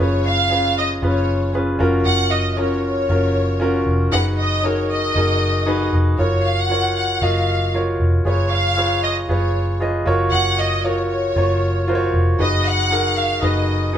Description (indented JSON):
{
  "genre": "piano-driven pop",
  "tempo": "116 BPM",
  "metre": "4/4",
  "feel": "swing 56% on 16ths",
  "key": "F# major",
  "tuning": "A4 = 439 Hz",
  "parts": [
    { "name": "warm studio violin section", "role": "melody", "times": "0.0-13.9 s", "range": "C#5 to F#5", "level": "-21 LUFS", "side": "equal", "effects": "none" },
    { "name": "clear grand piano", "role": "accompaniment", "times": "0.0-14.0 s", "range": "C#4 to D#5", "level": "-21 LUFS", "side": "equal", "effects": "none" },
    { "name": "vintage muted fingered electric bass", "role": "bass", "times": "0.0-14.0 s", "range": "E#1 to F#1", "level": "-20 LUFS", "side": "equal", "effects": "none" }
  ],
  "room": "moderate large studio reverb, RT60 1.1 s",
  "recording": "band playing live in one room",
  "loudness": "-16 LUFS",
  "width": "side -9 dB against mid",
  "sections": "0.0-14.0 A section",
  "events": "none",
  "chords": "0.0 C#7/F#; 1.8 F#maj7; 4.1 B6/F#; 6.2 F#maj7; 8.3 C#7/F#; 10.1 F#maj7; 12.4 B6/F#",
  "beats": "0.51 1.03 1.54 | 2.06 2.58 3.09 3.61 | 4.12 4.64 5.16 5.67 | 6.19 6.71 7.22 7.74 | 8.26 8.77 9.29 9.81 | 10.32 10.84 11.36 11.88 | 12.39 12.91 13.43 13.94"
}